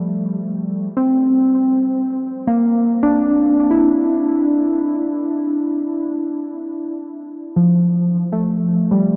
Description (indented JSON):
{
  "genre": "ambient",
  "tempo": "free time",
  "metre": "none",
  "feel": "none",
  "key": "unclear",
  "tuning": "A4 = 440 Hz",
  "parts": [
    { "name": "muted felt-like synth keys", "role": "solo", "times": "0.0-9.2 s", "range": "F3 to E4", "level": "-18 LUFS", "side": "equal", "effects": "chorus, tape echo" }
  ],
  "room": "wet huge ambient reverb, RT60 7.5 s",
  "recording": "dark, warm production",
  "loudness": "-18 LUFS",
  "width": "mono",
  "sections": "0.0-9.2 A section",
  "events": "none",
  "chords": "0.0 Fadd9; 0.8 Bbadd9; 3.9 N.C.; 6.9 F",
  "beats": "free time"
}